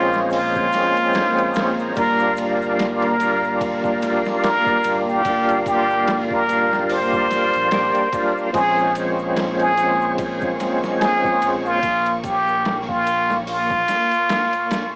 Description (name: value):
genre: trip hop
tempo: 73 BPM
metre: 4/4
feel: swing 56% on 16ths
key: Bb dorian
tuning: A4 = 438 Hz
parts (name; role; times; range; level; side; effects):
- trumpet with plunger mute; melody; 0.0-15.0 s; F4 to C5; -22 LUFS; equal; cassette tape, dub echo, plate reverb
- overdriven tonewheel organ; accompaniment; 0.0-11.8 s; F3 to G4; -24 LUFS; equal; chorus vibrato, slow rotary speaker, tremolo, tape echo, plate reverb
- string machine, cellos; sustained chords; 0.0-15.0 s; Bb3 to Db6; -32 LUFS; equal; ensemble chorus
- round analog bass; bass; 0.0-13.9 s; D1 to Bb1; -40 LUFS; equal; none
- egg shaker and triangle; percussion; 0.1-14.9 s; none; -55 LUFS; equal; none
- boom bap sampler-style drum kit; drums; 0.2-14.9 s; hi-hat, kick drum, ride cymbal, snare drum; -32 LUFS; equal; overdrive, cassette tape
room: moderate booth ambience, RT60 0.2 s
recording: home recording on cassette, small speaker sound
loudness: -19 LUFS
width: mono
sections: 0.0-15.0 A section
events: none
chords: 0.0 Bbm7; 2.0 Gm7; 8.5 Bbm7